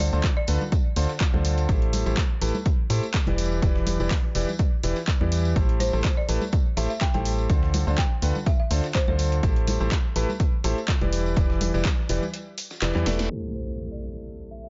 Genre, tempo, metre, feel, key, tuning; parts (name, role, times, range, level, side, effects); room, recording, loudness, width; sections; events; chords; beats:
piano house; 124 BPM; 4/4; swing 54% on 16ths; A minor; A4 = 444 Hz
folk marimba with medium hard mallets; melody; 0.0-0.9, 5.8-9.2, 13.5-14.7 s; C5 to G5; -36 LUFS; equal; diffuse ambient delay
bright concert grand piano; riff; 0.0-14.7 s; D3 to D5; -32 LUFS; equal; sidechain pumping, low-pass filter, diffuse ambient delay
organ-like FM bass; bass; 0.0-13.3 s; E1 to A2; -27 LUFS; equal; sidechain pumping
dusty soul sampler-style drum kit; drums; 0.0-13.3 s; hi-hat, snare drum; -43 LUFS; equal
punchy analog drum machine; drums; 0.0-14.7 s; crash cymbal, handclaps, hi-hat, shaker, snare drum; -35 LUFS; equal; low-pass filter on hats, low-pass filter on snare, low-pass filter on cymbals, low-pass filter on perc
tambourine and congas; percussion; 0.0-13.3 s; -38 LUFS; equal
electronic kick drum; drums; 0.2-12.0 s; -26 LUFS; equal
impact; sound effects; 13.3-14.7 s; -37 LUFS; equal
little or no reverb; low-pass filter, nothing above 7.5 kHz; -24 LUFS; mono
0.0-13.3 A section; 13.3-14.7 B section
break 12.3-13.3; drum fill 13.1; band accent 13.2; impact 13.3-14.7; filter sweep 13.3-14.7
0.0 Dm7; 1.7 Am7; 3.4 Em7; 5.6 Am7; 7.5 Dm7; 9.4 Am7; 11.1 Em7; 13.3 Am7
0.24 0.72 1.21 | 1.69 2.17 2.66 3.14 | 3.63 4.11 4.59 5.08 | 5.56 6.04 6.53 7.01 | 7.50 7.98 8.46 8.95 | 9.43 9.92 10.40 10.88 | 11.37 11.85 12.34 12.82 | 13.30 13.79 14.27